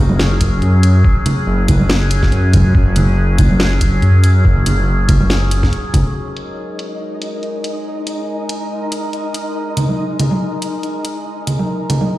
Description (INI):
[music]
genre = deep dubstep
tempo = 141 BPM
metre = 4/4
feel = swing 56% on 16ths, half-time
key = unclear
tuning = A4 = 440 Hz
[part]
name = overtone-sweeping drone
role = sustained chords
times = 0.0-12.2 s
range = F#3 to A#4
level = -22 LUFS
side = equal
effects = chorus, built-in reverb
[part]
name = dark detuned saw bass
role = bass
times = 0.0-5.7 s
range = F#1 to F#2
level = -13 LUFS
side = equal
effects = tube saturation
[part]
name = congas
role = percussion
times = 0.1-6.0, 9.8-12.1 s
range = none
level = -19 LUFS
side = right 1 dB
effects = dub echo
[part]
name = garage drum kit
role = drums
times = 0.2-12.0 s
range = hi-hat, snare drum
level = -22 LUFS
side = left 1 dB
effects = low-pass filter on hats, low-pass filter on snare
[part]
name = electronic kick drum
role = drums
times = 0.4-6.0 s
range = none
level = -15 LUFS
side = equal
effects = none
[part]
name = flickering grainy texture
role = texture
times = 6.6-12.2 s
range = D#4 to D#5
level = -27 LUFS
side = equal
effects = built-in reverb
[sound]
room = light reverb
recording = played on a big sound system in a bare room, stone room reverb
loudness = -13 LUFS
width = side -16 dB against mid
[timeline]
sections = 0.0-6.2 A section; 6.2-12.2 B section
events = drop 0.0-6.2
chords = 0.0 F#sus2; 6.2 G#5